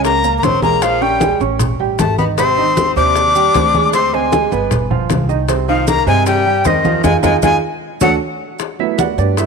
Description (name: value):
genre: Afro-Cuban jazz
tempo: 154 BPM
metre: 4/4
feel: straight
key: unclear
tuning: A4 = 437 Hz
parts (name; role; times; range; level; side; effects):
- breathy bright jazz flute; melody; 0.0-8.1 s; Eb5 to D6; -16 LUFS; left 2 dB; slapback echo
- bright tenor saxophone; second line; 0.0-8.1 s; Eb3 to D4; -21 LUFS; left 13 dB; slapback echo
- warm baby grand piano; accompaniment; 0.0-9.5 s; C3 to Db6; -18 LUFS; right 13 dB; none
- upright bass; bass; 0.0-9.5 s; G1 to G2; -21 LUFS; equal; none
- bongos; percussion; 0.0-9.5 s; none; -24 LUFS; left 15 dB; none
- congas; percussion; 0.0-9.5 s; none; -20 LUFS; left 1 dB; none
- maracas; percussion; 0.0-9.5 s; none; -29 LUFS; right 18 dB; none
room: light reverb, studio ambience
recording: 1960s-style stereo with parts hard left and right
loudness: -12 LUFS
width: side -5 dB against mid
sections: 0.0-8.6 A section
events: band accent 7.0-8.6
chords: 0.0 Gbadd9 (rootless); 0.8 Bbm7; 1.6 A7#11; 2.4 Abmaj7; 3.9 Abmaj7#11; 4.7 G7; 5.5 Cm; 7.0 Fm7; 7.8 D; 8.6 Gmaj7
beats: 0.05 0.43 | 0.82 1.21 1.60 1.99 | 2.38 2.77 3.16 3.55 | 3.94 4.32 4.71 5.10 | 5.49 5.88 6.27 6.66 | 7.04 7.43 7.82 8.21 | 8.60 8.99 9.38